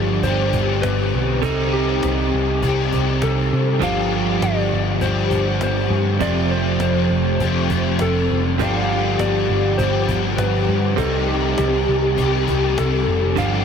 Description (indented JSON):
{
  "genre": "rock, shoegaze and dream pop",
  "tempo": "100 BPM",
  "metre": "4/4",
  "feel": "straight",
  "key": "G mixolydian",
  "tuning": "A4 = 444 Hz",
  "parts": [
    { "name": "soft struck synth lead", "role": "melody", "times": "0.0-13.6 s", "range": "G4 to F5", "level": "-25 LUFS", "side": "equal", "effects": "chorus, diffuse ambient delay" },
    { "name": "crunchy overdriven guitar", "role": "riff", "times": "0.0-13.6 s", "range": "F2 to G4", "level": "-21 LUFS", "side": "left 5 dB", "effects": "ensemble chorus" },
    { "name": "direct-recorded clean electric guitar", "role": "riff", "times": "0.0-13.6 s", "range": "F2 to Eb4", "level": "-24 LUFS", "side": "right 10 dB", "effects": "reverse reverb" },
    { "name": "hollow-body short-scale picked electric bass", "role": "bass", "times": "0.0-13.6 s", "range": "F1 to C3", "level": "-22 LUFS", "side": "equal", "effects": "none" },
    { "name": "cajon", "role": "drums", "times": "0.2-13.5 s", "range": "none", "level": "-30 LUFS", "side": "equal", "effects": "none" }
  ],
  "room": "wet huge ambient reverb, RT60 4.1 s",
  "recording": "dreamy mix soaked in reverb",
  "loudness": "-17 LUFS",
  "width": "side -7 dB against mid",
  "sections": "0.0-13.6 A section",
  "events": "none",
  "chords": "0.0 G7sus4; 1.4 Cm; 3.8 G7sus4; 6.2 F; 8.6 G7sus4; 11.0 Cm",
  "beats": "0.24 0.83 | 1.43 2.03 2.62 3.22 | 3.82 4.42 5.01 5.61 | 6.21 6.81 7.40 8.00 | 8.60 9.20 9.79 10.39 | 10.99 11.58 12.18 12.78 | 13.37"
}